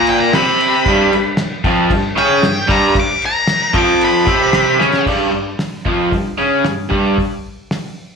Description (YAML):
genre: garage rock duo or trio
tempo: 114 BPM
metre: 4/4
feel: straight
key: unclear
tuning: A4 = 441 Hz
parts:
  - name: octave-fuzz lead guitar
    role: melody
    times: 0.0-5.0 s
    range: G5 to D6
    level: -16 LUFS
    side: left 2 dB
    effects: distortion
  - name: raw garage guitar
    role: riff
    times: 0.0-7.2 s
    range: F2 to C#4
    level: -14 LUFS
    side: right 1 dB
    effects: overdrive, slapback echo
  - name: cloth-damped thuddy drum kit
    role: drums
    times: 0.1-7.8 s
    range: crash cymbal, hi-hat, kick drum, snare drum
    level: -20 LUFS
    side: equal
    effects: slapback echo
room: light reverb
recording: live gig heard through the venue's PA, club reverb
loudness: -12 LUFS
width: side -5 dB against mid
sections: 0.0-5.1 A section; 5.1-8.2 B section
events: lead electric guitar solo 0.0-5.1; drum fill 4.8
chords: 0.0 G; 5.1 Fsus2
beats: 0.34 | 0.86 1.39 1.91 2.43 | 2.96 3.48 4.00 4.53 | 5.06 5.59 6.12 6.65 | 7.18 7.71